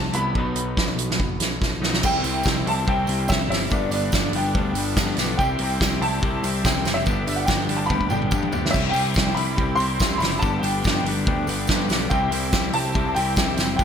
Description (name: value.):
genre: indie rock.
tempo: 143 BPM.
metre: 4/4.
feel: straight.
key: unclear.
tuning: A4 = 441 Hz.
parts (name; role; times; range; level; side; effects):
warm upright piano; melody; 0.0-13.8 s; D5 to C6; -26 LUFS; equal; analog chorus, digital delay.
electric guitar at the edge of break-up; riff; 0.0-13.8 s; G2 to E4; -29 LUFS; right 6 dB; wide subtle chorus.
twangy electric guitar; riff; 0.0-13.8 s; G2 to G4; -28 LUFS; left 9 dB; none.
modern bright picked electric bass; bass; 0.0-13.8 s; F#1 to G2; -28 LUFS; equal; none.
loose indie drum kit; drums; 0.1-13.8 s; crash cymbal, hi-hat, kick drum, snare drum, toms; -23 LUFS; equal; gated reverb.
percussive tonewheel organ; sustained chords; 2.0-13.8 s; G4 to C6; -38 LUFS; equal; none.
tambourine; percussion; 2.0-13.8 s; none; -39 LUFS; right 7 dB; none.
room: moderate lush hall reverb, RT60 1.5 s, small room ambience.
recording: bright 1980s-style digital production.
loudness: -19 LUFS.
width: side -8 dB against mid.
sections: 0.0-2.0 A section; 2.0-13.8 B section.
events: drum fill 1.6-2.0, 7.9-8.7.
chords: 0.3 B; 2.0 C; 3.7 G; 5.4 C; 7.1 G; 8.7 C; 10.4 G; 12.1 C.